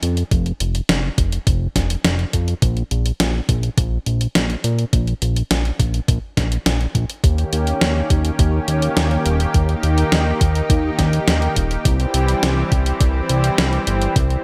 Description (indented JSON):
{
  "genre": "synthwave",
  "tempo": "104 BPM",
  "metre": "4/4",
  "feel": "straight",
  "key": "unclear",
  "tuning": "A4 = 440 Hz",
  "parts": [
    { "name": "fat analog bass", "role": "bass", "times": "0.0-14.4 s", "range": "Eb1 to Bb2", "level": "-21 LUFS", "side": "equal", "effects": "tube saturation" },
    { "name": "gated 80s digital drum machine", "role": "drums", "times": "0.0-14.4 s", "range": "hi-hat, snare drum", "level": "-23 LUFS", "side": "equal", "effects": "gated reverb, gated reverb snare, overdrive" },
    { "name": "electronic kick drum", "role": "drums", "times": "0.3-14.3 s", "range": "none", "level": "-20 LUFS", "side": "equal", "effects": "overdrive" },
    { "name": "lush unison pad", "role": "sustained chords", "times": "7.2-14.4 s", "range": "Eb3 to G4", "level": "-24 LUFS", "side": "equal", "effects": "chorus, sidechain pumping" }
  ],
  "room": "light reverb",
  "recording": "none",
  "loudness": "-19 LUFS",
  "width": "mono",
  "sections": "0.0-14.4 A section",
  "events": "none",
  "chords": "0.0 N.C.; 7.2 Eb7; 11.9 C"
}